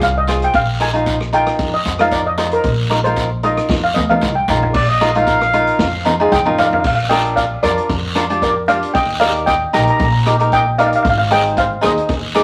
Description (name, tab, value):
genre	calypso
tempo	114 BPM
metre	4/4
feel	swing 54% on 16ths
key	unclear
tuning	A4 = 440 Hz
part	steel pan	melody	0.0-12.3 s	Bb4 to Bb5	-19 LUFS	equal	none
part	cavaquinho	accompaniment	0.0-12.4 s	D4 to D5	-20 LUFS	equal	none
part	upright bass	bass	0.0-12.4 s	Ab1 to F2	-24 LUFS	equal	none
part	vintage drum kit	drums	0.0-12.4 s	crash cymbal, hi-hat, kick drum, rim click, snare drum, toms	-25 LUFS	equal	none
part	guiro	percussion	0.0-12.4 s	none	-29 LUFS	equal	none
part	warm horn section	second line	4.7-6.2 s	D5 to F5	-19 LUFS	equal	none
room	wet small room reverb, RT60 0.5 s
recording	vinyl crackle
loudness	-15 LUFS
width	mono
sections	0.0-4.7 A section; 4.7-6.8 B section; 6.8-12.4 C section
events	steel pan solo 0.0-4.7; drum fill 3.7-4.7, 5.8-6.8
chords	0.0 Fm; 0.5 Bbsus4; 6.8 Bb; 8.9 Eb; 11.0 Ab